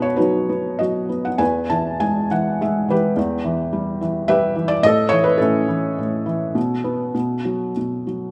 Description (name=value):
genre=classical, lyrical solo piano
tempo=105 BPM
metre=3/4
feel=uneven beats, rubato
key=unclear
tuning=A4 = 440 Hz
part: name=felt-muted upright piano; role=solo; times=0.0-8.3 s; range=E2 to A5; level=-20 LUFS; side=equal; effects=none
room=moderate recital hall reverb, RT60 1.4 s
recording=none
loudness=-20 LUFS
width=mono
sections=0.0-8.3 A section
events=none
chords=0.0 B; 1.4 E; 3.2 Em; 4.8 A; 6.6 Bsus4; 7.1 B5